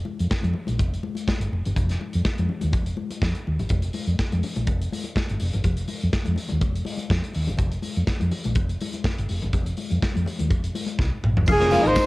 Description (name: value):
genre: disco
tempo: 124 BPM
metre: 4/4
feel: straight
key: unclear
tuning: A4 = 439 Hz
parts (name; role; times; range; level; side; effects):
- congas; percussion; 0.1-12.1 s; none; -32 LUFS; left 4 dB; none
- hollow-body short-scale fingered electric bass; bass; 0.2-11.9 s; F1 to F2; -24 LUFS; equal; none
- modern studio drum kit; drums; 0.2-12.1 s; crash cymbal, hi-hat, kick drum, snare drum, toms; -26 LUFS; equal; cassette tape
- warm flugelhorn; melody; 11.5-12.1 s; Ab4 to C5; -19 LUFS; equal; cassette tape
- semi-hollow electric guitar; accompaniment; 11.5-11.9 s; F3 to Ab4; -26 LUFS; right 3 dB; cassette tape
- percussive tonewheel organ; sustained chords; 11.5-12.1 s; Db3 to F4; -27 LUFS; equal; chorus vibrato, slow rotary speaker, cassette tape
- tambourine; percussion; 11.5-12.1 s; none; -41 LUFS; right 4 dB; none
- dark studio violin section; second line; 11.7-12.1 s; Eb4 to F5; -20 LUFS; left 1 dB; cassette tape
room: little or no reverb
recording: home recording on cassette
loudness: -22 LUFS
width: side -20 dB against mid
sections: 0.0-11.5 A section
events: drum fill 11.0-11.5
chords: 0.0 Bb5/F; 0.8 N.C.; 11.0 C5; 11.5 Bbm7/F